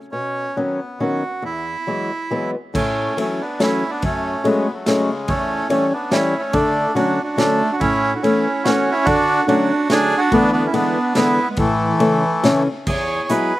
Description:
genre	musette waltz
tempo	142 BPM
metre	3/4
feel	rubato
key	A major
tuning	A4 = 439 Hz
part	bandoneon	melody	0.1-13.6 s	C#3 to C#5	-20 LUFS	right 1 dB	none
part	fingerpicked old ladder-braced acoustic guitar	accompaniment	0.1-13.5 s	E2 to E4	-20 LUFS	left 2 dB	none
part	raw garage drum kit	drums	2.7-13.4 s	crash cymbal, hi-hat, kick drum, ride cymbal, snare drum	-26 LUFS	equal	none
part	mellow clarinet	second line	7.0-12.6 s	E3 to D4	-23 LUFS	right 3 dB	none
room	light reverb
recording	recorded outdoors, with no room sound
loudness	-16 LUFS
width	side -16 dB against mid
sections	0.0-2.7 A section; 2.7-12.9 B section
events	none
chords	0.1 Badd9; 1.4 Eadd9; 2.7 A6; 4.0 F#madd9; 5.3 A7/E; 6.5 Dmaj7; 7.8 Aadd9; 9.1 Dmaj7; 10.3 E7sus4; 10.8 E7; 11.6 A; 12.9 Eadd9

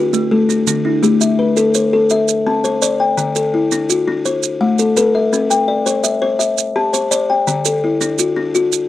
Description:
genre	southern african traditional, mbira-style interlocking cycle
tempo	112 BPM (dotted quarters)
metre	12/8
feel	straight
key	A equiheptatonic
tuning	A4 = 440 Hz
part	buzzing kalimba	arpeggios	0.0-8.9 s	D3 to A5	-14 LUFS	left 3 dB	none
part	kalimba	arpeggios	0.0-1.4 s	D3 to B4-29c	-23 LUFS	right 6 dB	none
part	maracas	percussion	0.1-8.9 s	none	-20 LUFS	right 11 dB	none
room	little or no reverb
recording	dry, close 1970s-style studio recording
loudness	-13 LUFS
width	side -13 dB against mid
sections	0.0-1.0 A section; 1.0-8.9 B section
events	none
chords	0.0 D; 1.0 Am; 2.1 C; 3.2 D; 4.3 Am; 5.3 C; 7.5 D

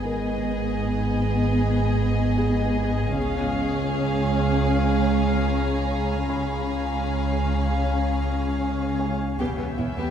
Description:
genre	cinematic, suspense film score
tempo	77 BPM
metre	4/4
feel	straight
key	unclear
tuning	A4 = 440 Hz
part	warm studio violin section	melody	0.0-10.1 s	D#5 to E#5	-34 LUFS	left 4 dB	none
part	warm chamber violin section	second line	0.0-10.1 s	B3 to G#4	-31 LUFS	right 1 dB	none
part	dark studio viola section	accompaniment	0.0-10.1 s	B3 to C#4	-28 LUFS	left 3 dB	none
part	soft additive organ-like pad	sustained chords	0.0-10.1 s	B3 to B5	-34 LUFS	left 1 dB	ensemble chorus, built-in reverb
part	warm studio cello section	bass	0.0-10.1 s	C#2 to G#2	-29 LUFS	right 4 dB	none
part	deep rumbling drone	drone	0.0-10.1 s	G#1 to E2	-28 LUFS	left 1 dB	built-in reverb
part	felt-muted upright piano	texture	0.0-10.1 s	G#4 to B5	-38 LUFS	equal	none
part	dark studio double bass section	bass	0.1-9.9 s	E1 to C#2	-28 LUFS	right 4 dB	none
part	clear studio violin section	texture	3.2-10.1 s	G#5 to G6	-39 LUFS	left 5 dB	none
room	wet concert hall reverb, RT60 2.5 s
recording	heard from further back in the room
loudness	-21 LUFS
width	side -8 dB against mid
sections	0.0-10.1 A section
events	none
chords	0.0 G#m; 3.2 C#; 9.4 Em

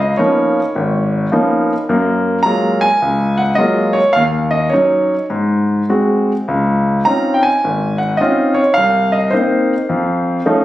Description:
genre	solo jazz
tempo	106 BPM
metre	4/4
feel	swing 67% on 8ths, rubato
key	unclear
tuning	A4 = 438 Hz
part	clear concert grand piano	solo	0.0-10.6 s	Ab1 to Bb5	-12 LUFS	equal	none
room	moderate club reverb, RT60 0.6 s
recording	recorded on a phone in the room, studio reverb, nothing above 11.0 kHz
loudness	-12 LUFS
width	side -15 dB against mid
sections	0.0-10.6 A section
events	none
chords	0.0 Db13; 1.9 Gbmaj9; 4.1 Ebm7; 5.3 Ab7; 6.5 Dbmaj9; 8.8 Cm7; 9.9 F7b13

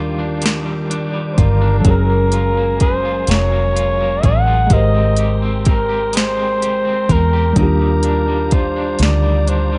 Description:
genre	slow six-eight R&B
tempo	42 BPM (dotted quarters)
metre	6/8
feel	straight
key	Eb major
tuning	A4 = 440 Hz
part	mellow flugelhorn	melody	0.0-9.8 s	A4 to Gb5	-21 LUFS	equal	slapback echo
part	electric guitar at the edge of break-up	second line	0.0-9.8 s	Eb3 to Bb4	-28 LUFS	equal	tremolo
part	tine electric piano	accompaniment	0.0-9.8 s	Eb3 to C5	-24 LUFS	equal	none
part	tonewheel organ	sustained chords	0.0-9.8 s	Ab3 to D6	-33 LUFS	equal	chorus vibrato, stopped rotary speaker
part	vintage muted fingered electric bass	bass	0.0-9.8 s	F1 to Fb2	-19 LUFS	equal	none
part	smooth R&B drum kit	drums	0.4-9.7 s	hi-hat, kick drum, snare drum	-18 LUFS	equal	overdrive
room	little or no reverb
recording	nothing above 10.6 kHz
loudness	-16 LUFS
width	mono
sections	0.0-9.8 A section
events	none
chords	0.0 Ebmaj9; 1.9 Gbmaj9; 4.7 Abmaj9; 7.6 Ebmaj9

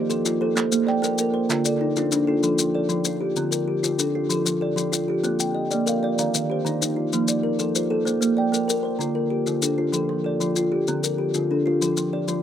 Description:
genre	southern african traditional, mbira-style interlocking cycle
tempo	128 BPM (dotted quarters)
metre	12/8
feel	straight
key	F mixolydian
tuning	A4 = 438 Hz
part	kalimba	arpeggios	0.0-12.4 s	D3 to G5	-24 LUFS	left 5 dB	slapback echo
part	kalimba	arpeggios	0.0-12.4 s	D3 to G5	-24 LUFS	right 4 dB	none
part	maracas	percussion	0.1-12.4 s	none	-26 LUFS	left 6 dB	none
part	group handclap	percussion	0.3-2.2 s	none	-30 LUFS	right 4 dB	none
room	little or no reverb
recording	recorded outdoors, with no room sound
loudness	-20 LUFS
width	side -10 dB against mid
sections	0.0-2.4 A section; 2.4-12.4 A section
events	none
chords	0.0 F; 0.6 Bb; 1.5 Dm; 2.4 F; 3.4 Dm; 4.3 F; 5.2 Bb; 6.2 Eb; 7.1 F; 8.1 Bb; 9.0 Dm; 9.9 F; 10.9 Dm; 11.8 F

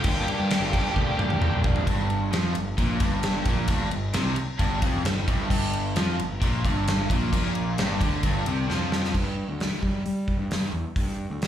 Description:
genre	classic rock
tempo	132 BPM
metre	4/4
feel	straight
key	G minor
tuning	A4 = 440 Hz
part	octave-fuzz lead guitar	melody	0.0-1.6 s	G4	-30 LUFS	right 1 dB	distortion, slapback echo
part	overdriven electric guitar	riff	0.0-9.1 s	F2 to D4	-29 LUFS	equal	none
part	overdriven electric guitar	riff	0.0-9.1 s	F2 to D4	-33 LUFS	equal	none
part	fuzz picked electric bass	bass	0.0-11.5 s	E1 to G3	-28 LUFS	equal	overdrive
part	gated 80s drum kit	drums	0.0-11.5 s	crash cymbal, hi-hat, kick drum, ride cymbal, snare drum, toms	-26 LUFS	equal	none
room	light reverb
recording	live gig heard through the venue's PA, club reverb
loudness	-23 LUFS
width	side -10 dB against mid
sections	0.0-1.9 A section; 1.9-9.1 B section; 9.1-11.5 C section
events	drum fill 1.0-1.9, 8.7-9.1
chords	0.0 Gm; 9.1 G5

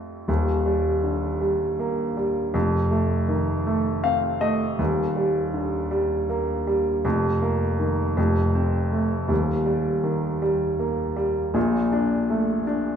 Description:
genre	folk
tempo	53 BPM (dotted quarters)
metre	6/8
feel	straight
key	unclear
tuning	A4 = 440 Hz
part	warm baby grand piano	solo	0.0-13.0 s	Eb1 to F5	-21 LUFS	equal	none
room	wet large studio reverb, RT60 1.4 s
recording	band playing live in one room, nothing above 10.3 kHz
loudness	-21 LUFS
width	side -8 dB against mid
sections	0.3-13.0 A section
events	none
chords	0.3 Ebmaj7; 2.5 F7; 4.8 Ebmaj7; 7.0 F7sus4; 8.2 F; 9.3 Eb; 11.6 Bbmaj7

